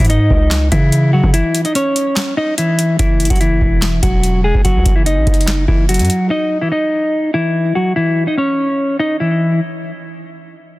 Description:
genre	hip hop, trap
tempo	145 BPM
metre	4/4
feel	half-time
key	unclear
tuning	A4 = 439 Hz
part	clean electric guitar	melody	0.0-9.6 s	E3 to D#5	-15 LUFS	left 1 dB	digital delay
part	long sustained 808-style bass	bass	0.0-6.1 s	E1 to C#3	-15 LUFS	equal	none
part	booming analog drum machine	drums	0.0-6.2 s	handclaps, hi-hat, kick drum, snare drum	-16 LUFS	equal	none
room	digital ambience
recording	dense, heavily limited modern master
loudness	-12 LUFS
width	side -19 dB against mid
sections	0.0-3.0 A section; 3.0-9.6 B section; 9.6-10.8 C section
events	break 1.3-3.0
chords	0.0 C#m; 3.0 N.C.; 6.3 C#m; 9.6 N.C.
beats	0.10 0.51 0.92 | 1.34 1.75 2.17 2.58 | 2.99 3.41 3.82 4.24 | 4.65 5.06 5.48 5.89 | 6.30 6.72 7.13 7.54 | 7.96 8.37 8.79 9.20

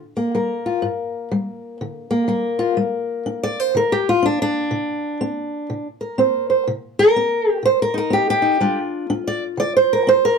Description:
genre	acoustic country blues, solo or duo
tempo	123 BPM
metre	4/4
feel	swing 63% on 8ths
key	G minor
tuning	A4 = 440 Hz
part	fingerpicked old ladder-braced acoustic guitar	solo	0.0-10.4 s	G2 to D5	-17 LUFS	equal	none
room	light reverb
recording	none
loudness	-17 LUFS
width	side -5 dB against mid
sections	0.0-10.4 A section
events	steel-string acoustic guitar solo 0.0-10.4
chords	0.0 Gm; 4.7 Cm7; 8.6 Gm7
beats	0.35 | 0.83 1.32 1.81 2.29 | 2.78 3.27 3.75 4.24 | 4.73 5.21 5.70 6.18 | 6.67 7.16 7.64 8.13 | 8.62 9.10 9.59 10.07

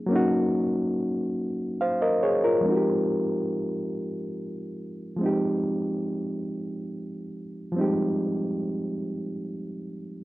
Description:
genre	R&B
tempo	47 BPM (dotted quarters)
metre	6/8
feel	straight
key	unclear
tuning	A4 = 439 Hz
part	overdriven reed electric piano	solo	0.0-10.2 s	F3 to F5	-25 LUFS	equal	none
room	light reverb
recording	rough home demo mix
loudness	-24 LUFS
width	side -17 dB against mid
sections	0.0-2.6 A section; 2.6-10.2 B section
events	none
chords	0.0 Ebm9; 2.6 Fm9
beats	| 0.09 1.37 | 2.65 3.92 | 5.20 6.48 | 7.75 9.03

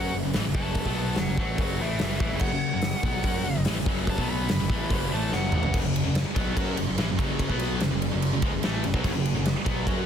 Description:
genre	hard rock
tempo	145 BPM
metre	4/4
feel	straight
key	F# minor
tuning	A4 = 441 Hz
part	nasal lead guitar with a parked wah	melody	0.0-5.7 s	B4 to B5	-33 LUFS	equal	overdrive, digital delay
part	high-gain distorted guitar	riff	0.0-10.1 s	F#2 to F#4	-31 LUFS	left 9 dB	distortion
part	scooped high-gain guitar	riff	0.0-10.1 s	F#2 to F#4	-32 LUFS	right 9 dB	distortion
part	fuzz picked electric bass	bass	0.0-10.1 s	F#1 to F#2	-30 LUFS	equal	overdrive
part	big rock drum kit	drums	0.3-10.0 s	crash cymbal, hi-hat, kick drum, ride cymbal, snare drum, toms	-28 LUFS	equal	none
part	cranked stack guitar	riff	5.7-10.1 s	F#2 to F#4	-35 LUFS	left 1 dB	none
room	small room reverb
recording	dense, heavily limited modern master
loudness	-23 LUFS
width	side -8 dB against mid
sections	0.0-5.7 A section; 5.7-10.1 B section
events	lead electric guitar solo 0.0-5.7; drum fill 5.3-5.7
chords	0.0 F#m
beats	0.36 | 0.77 1.19 1.60 2.02 | 2.43 2.84 3.26 3.67 | 4.09 4.50 4.91 5.33 | 5.74 6.16 6.57 6.98 | 7.40 7.81 8.22 8.64 | 9.05 9.46 9.88

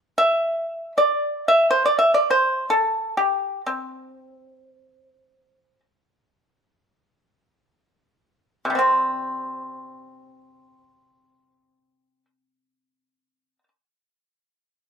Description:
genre	chinese traditional, Chinese solo plucked strings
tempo	free time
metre	none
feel	none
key	C gong mode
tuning	A4 = 440 Hz
part	pipa	solo	0.2-13.7 s	C3 to E5	-19 LUFS	equal	none
room	moderate stone room reverb, RT60 1.0 s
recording	band playing live in one room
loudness	-19 LUFS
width	side -7 dB against mid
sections	0.0-8.8 A section; 8.8-13.7 B section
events	slowing down 0.0-8.8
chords	none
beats	free time

